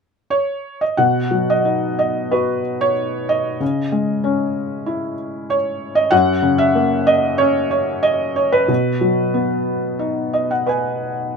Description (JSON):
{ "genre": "classical, lyrical solo piano", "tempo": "93 BPM", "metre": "4/4", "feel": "uneven beats, rubato", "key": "B major", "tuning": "A4 = 441 Hz", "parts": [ { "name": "felt-muted upright piano", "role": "solo", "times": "0.3-11.4 s", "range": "F#2 to G#5", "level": "-16 LUFS", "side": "equal", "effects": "none" } ], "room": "light reverb", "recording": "minimal, uncompressed stereo recording", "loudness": "-16 LUFS", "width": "side -5 dB against mid", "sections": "1.0-11.4 A section", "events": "felt piano fill 10.0-11.4", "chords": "0.0 N.C.; 1.0 B; 3.6 C#madd9; 6.1 F#; 8.7 B", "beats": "0.33 | 0.99 1.66 2.33 2.97 | 3.61 4.24 4.87 5.50 | 6.12 6.75 7.40 8.04 | 8.69 9.34 10.00 10.69" }